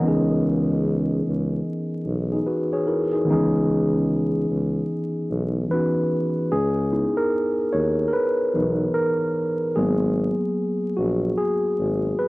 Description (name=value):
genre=lo-fi hip hop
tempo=74 BPM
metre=4/4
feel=swing 63% on 16ths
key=C# dorian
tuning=A4 = 439 Hz
part: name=mellow tine electric piano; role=accompaniment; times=0.0-12.3 s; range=D#3 to D#5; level=-21 LUFS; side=equal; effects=cassette tape, low-pass filter
part: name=breathy tuba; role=bass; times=0.0-12.1 s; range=G#1 to D#2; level=-24 LUFS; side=equal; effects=none
room=moderate spring reverb, RT60 2.1 s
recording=vinyl crackle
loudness=-20 LUFS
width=side -21 dB against mid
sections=0.0-6.5 A section; 6.5-12.3 B section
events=tine electric piano solo 6.5-12.3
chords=0.0 C#m9; 9.8 G#m7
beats=| 0.03 0.84 1.65 2.46 | 3.27 4.08 4.89 5.70 | 6.51 7.33 8.14 8.95 | 9.76 10.57 11.38 12.19